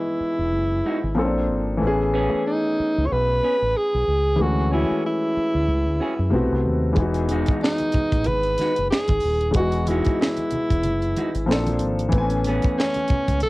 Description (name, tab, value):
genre	R&B, neo-soul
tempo	93 BPM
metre	4/4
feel	swing 58% on 16ths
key	E major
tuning	A4 = 440 Hz
part	breathy tenor saxophone	melody	0.0-13.5 s	C#4 to C#5	-23 LUFS	equal	cassette tape
part	warm grand piano	accompaniment	0.0-13.5 s	C3 to G#5	-25 LUFS	left 2 dB	cassette tape
part	deep dub fingered electric bass	bass	0.2-13.5 s	D#1 to F#2	-24 LUFS	equal	none
part	electric guitar through a small old amp	second line	0.9-12.8 s	G#3 to G#4	-27 LUFS	right 1 dB	cassette tape
part	tight funk drum kit	drums	7.0-13.5 s	finger snaps, hi-hat, kick drum, snare drum	-23 LUFS	equal	cassette tape
part	congas	percussion	7.0-13.5 s	none	-34 LUFS	right 1 dB	none
room	little or no reverb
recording	home recording on cassette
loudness	-19 LUFS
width	side -20 dB against mid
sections	0.0-13.5 A section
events	none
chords	0.0 Emaj9; 1.2 A#maj9; 1.8 Amaj9; 4.4 Dmaj9#11; 6.3 B7b9; 7.0 Emaj9; 11.5 A#maj9; 12.1 Amaj9